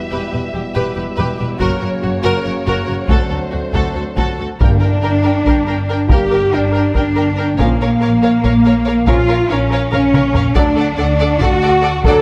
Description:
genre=cinematic, epic orchestral film score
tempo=282 BPM (eighths)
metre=7/8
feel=straight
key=unclear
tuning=A4 = 440 Hz
part: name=dark symphonic violin section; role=melody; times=0.0-12.2 s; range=C5 to G5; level=-31 LUFS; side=equal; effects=none
part: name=clear trombone section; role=sustained chords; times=0.0-12.2 s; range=B2 to D4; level=-28 LUFS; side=equal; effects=none
part: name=mellow French horn section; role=sustained chords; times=0.0-12.2 s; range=A3 to A4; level=-20 LUFS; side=equal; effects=none
part: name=warm symphonic violin section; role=second line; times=0.1-12.1 s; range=F#4 to D5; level=-27 LUFS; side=equal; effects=none
part: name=warm symphonic viola section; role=accompaniment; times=0.1-12.1 s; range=F#4 to Bb4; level=-27 LUFS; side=equal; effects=none
part: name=dark symphonic double bass section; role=bass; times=0.1-12.2 s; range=E1 to D2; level=-22 LUFS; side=equal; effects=none
part: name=warm studio cello section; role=bass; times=0.1-12.2 s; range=D2 to A4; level=-24 LUFS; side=equal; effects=none
part: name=taiko ensemble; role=drums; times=1.6-12.2 s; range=none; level=-19 LUFS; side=equal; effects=none
part: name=timpani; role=percussion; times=4.6-5.2 s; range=G2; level=-25 LUFS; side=equal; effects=none
room=moderate concert hall reverb, RT60 2.3 s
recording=none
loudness=-15 LUFS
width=mono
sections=0.0-4.6 A section; 4.6-12.2 B section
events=drum fill 9.9-10.6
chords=0.0 Em; 1.6 F#; 3.1 D7; 4.6 Gm; 7.6 Bbm; 10.6 D

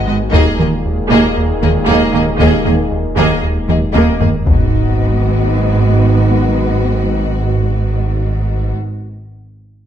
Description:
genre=cinematic, hybrid orchestral and electronic film score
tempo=116 BPM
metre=4/4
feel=straight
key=G# minor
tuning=A4 = 443 Hz
part: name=warm symphonic violin section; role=melody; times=0.0-8.7 s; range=D#5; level=-25 LUFS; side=left 5 dB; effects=low-pass filter
part: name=rich symphonic violin section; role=second line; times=0.0-8.7 s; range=F#4 to G#4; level=-23 LUFS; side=left 3 dB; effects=none
part: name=warm symphonic viola section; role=accompaniment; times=0.0-8.7 s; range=A#3 to B3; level=-19 LUFS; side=right 2 dB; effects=low-pass filter
part: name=analog drone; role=sustained chords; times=0.0-8.7 s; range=F#3 to D#5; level=-24 LUFS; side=equal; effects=none
part: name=bright trombone section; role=sustained chords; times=0.0-8.7 s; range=G#2 to D#3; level=-26 LUFS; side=right 4 dB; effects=low-pass filter
part: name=mellow French horn section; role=sustained chords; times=0.0-8.7 s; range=A#3 to G#4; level=-25 LUFS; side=left 5 dB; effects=low-pass filter
part: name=sub bass with octave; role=bass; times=0.0-8.7 s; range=D#1 to G#1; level=-21 LUFS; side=left 1 dB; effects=none
part: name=warm grand piano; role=texture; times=0.0-4.5 s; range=F#5 to G#5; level=-39 LUFS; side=left 2 dB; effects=none
part: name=rubbery square bass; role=riff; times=0.1-4.4 s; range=D#2 to G#3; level=-19 LUFS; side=right 2 dB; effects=low-pass filter
part: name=dark symphonic double bass section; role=bass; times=0.1-8.7 s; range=G#1 to D#2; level=-19 LUFS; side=right 3 dB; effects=none
part: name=rich symphonic cello section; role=bass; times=0.1-8.7 s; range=D#2 to G#2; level=-19 LUFS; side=right 2 dB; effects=none
part: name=taiko ensemble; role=drums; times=0.3-5.5 s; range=none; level=-17 LUFS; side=left 1 dB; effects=none
part: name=impact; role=sound effects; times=4.5-6.5 s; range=none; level=-21 LUFS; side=left 1 dB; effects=none
room=moderate recital hall reverb, RT60 1.3 s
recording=dark, warm production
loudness=-11 LUFS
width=side -10 dB against mid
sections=0.0-4.5 A section; 4.5-8.6 B section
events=filter sweep 0.0-4.5; drum fill 3.7-4.5; impact 4.5-6.5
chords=0.3 D#sus4; 4.5 G#m7

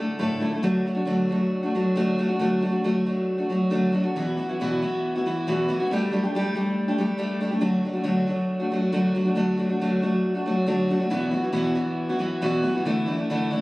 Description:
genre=rock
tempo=137 BPM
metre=4/4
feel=straight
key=D major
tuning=A4 = 442 Hz
part: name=picked steel-string acoustic guitar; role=solo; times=0.0-13.6 s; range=E2 to A4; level=-22 LUFS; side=equal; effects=tape echo
room=light reverb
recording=recorded on a phone in the room, studio ambience, compression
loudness=-22 LUFS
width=side -20 dB against mid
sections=0.6-13.6 A section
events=none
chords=0.0 Asus4; 0.6 D; 4.1 Esus2; 5.9 Gsus2; 7.6 D; 11.1 Esus2; 12.9 Dsus2

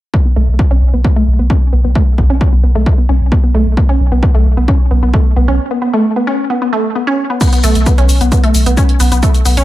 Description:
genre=driving peak-time techno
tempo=132 BPM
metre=4/4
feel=straight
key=unclear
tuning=A4 = 440 Hz
part: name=resonant blip pluck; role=riff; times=0.1-9.6 s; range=A3 to C#4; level=-16 LUFS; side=equal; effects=chorus, overdrive, sidechain pumping, analog delay
part: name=electronic kick drum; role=drums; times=0.1-9.3 s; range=none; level=-11 LUFS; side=equal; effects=none
part: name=saturated sub bass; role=bass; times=0.4-9.6 s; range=B1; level=-12 LUFS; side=equal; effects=tube saturation, sidechain pumping, low-pass filter
part: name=punchy analog drum machine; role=drums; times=7.4-9.6 s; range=crash cymbal, hi-hat, shaker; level=-20 LUFS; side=left 2 dB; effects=none
room=light reverb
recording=none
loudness=-9 LUFS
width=side -15 dB against mid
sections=0.1-7.4 A section; 7.4-9.6 B section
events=filter sweep on synth arpeggio sound 0.1-7.4; break 5.6-7.4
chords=0.1 Bsus2

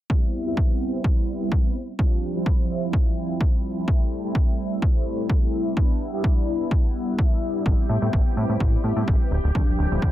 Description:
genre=filtered disco house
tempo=127 BPM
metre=4/4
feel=swing 53% on 16ths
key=A minor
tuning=A4 = 441 Hz
part: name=mellow synth brass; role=accompaniment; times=0.1-10.1 s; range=F3 to E4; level=-27 LUFS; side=equal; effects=chorus, phaser, sidechain pumping, low-pass filter
part: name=electronic kick drum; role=drums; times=0.1-10.1 s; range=none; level=-20 LUFS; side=equal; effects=none
part: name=string machine, full ensemble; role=sustained chords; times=7.7-10.1 s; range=G4 to G5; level=-35 LUFS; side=equal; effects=ensemble chorus, sidechain pumping, low-pass filter
part: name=plucky analog bass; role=bass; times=7.7-10.1 s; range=D1 to A2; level=-23 LUFS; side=equal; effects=sidechain pumping, low-pass filter
room=digital ambience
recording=none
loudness=-20 LUFS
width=side -13 dB against mid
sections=0.1-10.1 A section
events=filter sweep 0.1-10.1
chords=0.1 Cmaj7/G; 1.8 Dm11; 3.9 Am7/G; 5.8 Em7; 7.7 Am9; 9.3 Dm11

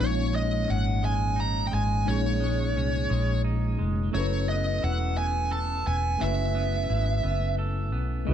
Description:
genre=R&B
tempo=58 BPM (dotted quarters)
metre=6/8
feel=straight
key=unclear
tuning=A4 = 441 Hz
part: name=smooth overdriven lead guitar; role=melody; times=0.0-7.5 s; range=Db5 to Bb5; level=-30 LUFS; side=right 2 dB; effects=none
part: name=electric guitar at the edge of break-up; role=second line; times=0.0-8.3 s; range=Bb2 to A4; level=-33 LUFS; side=right 4 dB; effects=none
part: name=tine electric piano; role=accompaniment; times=0.0-8.3 s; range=F3 to Ab5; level=-32 LUFS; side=left 1 dB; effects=medium stereo tremolo
part: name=vintage muted fingered electric bass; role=bass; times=0.0-8.3 s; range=Fb1 to Db2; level=-27 LUFS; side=left 1 dB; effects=none
room=light reverb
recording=dark, warm production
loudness=-24 LUFS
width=side -9 dB against mid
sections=0.0-8.3 A section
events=none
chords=0.0 Bbm11; 4.1 Gbm11

